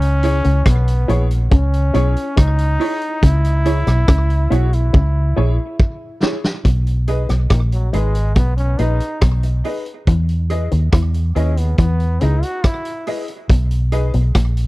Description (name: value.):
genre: roots reggae.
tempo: 70 BPM.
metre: 4/4.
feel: straight.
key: B major.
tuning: A4 = 440 Hz.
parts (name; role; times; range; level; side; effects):
bright trombone; melody; 0.0-13.1 s; D#3 to F#4; -24 LUFS; equal; tape echo.
electric guitar with an envelope filter; riff; 0.0-14.6 s; G#2 to E3; -24 LUFS; left 3 dB; none.
vintage muted fingered electric bass; bass; 0.0-14.7 s; G#1 to E2; -16 LUFS; equal; none.
vintage drum kit; drums; 0.0-14.7 s; hi-hat, kick drum, rim click, snare drum; -16 LUFS; equal; none.
mellow electric guitar; accompaniment; 0.2-14.1 s; E4 to D#5; -26 LUFS; right 7 dB; lush chorus, tape echo.
clear upright piano; stabs; 0.2-14.1 s; D#4 to D#5; -27 LUFS; left 5 dB; none.
room: small room ambience.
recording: dry, close 1970s-style studio recording.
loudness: -14 LUFS.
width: side -20 dB against mid.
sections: 0.0-6.7 A section; 6.7-14.7 B section.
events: drum fill 4.9-6.7; trombone solo 6.7-14.7.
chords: 0.0 C#m; 6.7 B6; 10.1 Emaj7; 13.5 B6.